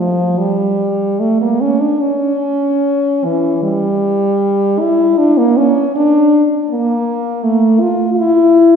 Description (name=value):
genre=classical, free, expressive piece for unaccompanied French horn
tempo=72-84 BPM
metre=3/4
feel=rubato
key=unclear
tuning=A4 = 445 Hz
part: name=mellow French horn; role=solo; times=0.0-8.8 s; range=E3 to F4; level=-11 LUFS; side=equal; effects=none
room=wet concert hall reverb, RT60 2.1 s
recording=heard from further back in the room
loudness=-11 LUFS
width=side -7 dB against mid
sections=0.0-8.8 A section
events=none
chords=none